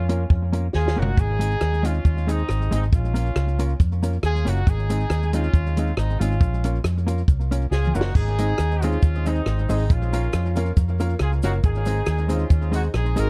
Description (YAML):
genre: ska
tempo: 138 BPM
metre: 4/4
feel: swing 53% on 8ths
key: Ab mixolydian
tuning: A4 = 440 Hz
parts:
  - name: clear horn section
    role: melody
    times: 0.0-13.3 s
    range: C4 to Bb4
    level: -31 LUFS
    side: equal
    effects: none
  - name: vintage muted fingered electric bass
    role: bass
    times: 0.0-13.3 s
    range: Gb1 to F2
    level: -24 LUFS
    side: equal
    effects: none
  - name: hollow-body jazz guitar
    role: accompaniment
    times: 0.1-13.3 s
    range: Ab3 to Bb4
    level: -32 LUFS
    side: equal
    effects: tape echo
  - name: compact cocktail drum kit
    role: drums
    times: 0.1-13.3 s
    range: hi-hat, kick drum, rim click, snare drum, splash cymbal, toms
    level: -23 LUFS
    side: equal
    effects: none
  - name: cabasa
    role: percussion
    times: 1.2-13.3 s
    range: none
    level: -51 LUFS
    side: equal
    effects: tape echo
  - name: warm upright piano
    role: stabs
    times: 8.4-13.3 s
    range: Eb4 to F5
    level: -34 LUFS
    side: equal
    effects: tape echo
room: light reverb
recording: dark, warm production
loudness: -22 LUFS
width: mono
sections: 0.0-13.3 A section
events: drum fill 0.7-1.2, 7.7-8.2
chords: 0.0 Bbm; 1.2 Ab; 2.9 Bbm; 4.7 Ab; 6.4 Bbm; 8.2 Ab; 9.9 Bbm; 11.6 Ab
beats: 0.30 0.74 | 1.17 1.61 2.05 2.48 | 2.92 3.36 3.79 4.23 | 4.67 5.10 5.54 5.98 | 6.41 6.85 7.28 7.72 | 8.15 8.59 9.03 9.46 | 9.89 10.33 10.76 11.20 | 11.63 12.07 12.50 12.93